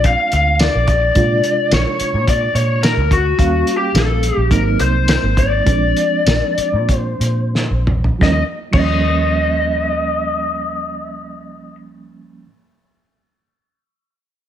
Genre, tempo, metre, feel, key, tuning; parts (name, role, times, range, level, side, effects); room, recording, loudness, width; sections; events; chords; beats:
straight-eighth soul blues; 86-108 BPM; 4/4; straight; A4 = 438 Hz
lead guitar through a small cranked amp; melody; 0.0-11.8 s; Gb4 to F5; -18 LUFS; left 3 dB; overdrive
mellow reed electric piano; accompaniment; 0.0-12.5 s; C3 to F5; -23 LUFS; right 5 dB; fast tremolo
vintage muted fingered electric bass; bass; 0.0-12.4 s; Ab1 to Bb2; -18 LUFS; equal
cloth-damped thuddy drum kit; drums; 0.0-8.9 s; crash cymbal, hi-hat, kick drum, snare drum, tambourine, toms; -18 LUFS; equal
light reverb; -13 LUFS; side -10 dB against mid
0.0-8.2 A section; 8.2-11.0 B section
slowing down 3.4-8.2; drum fill 7.5-8.2
0.0 Bb9; 3.4 Eb9; 4.5 Ab9; 5.7 Bb9; 8.2 Eb9
0.05 0.60 | 1.16 1.72 2.27 2.83 | 3.38 3.94 4.51 5.08 | 5.67 6.27 6.89 7.54 | 8.22 8.91 9.61 10.30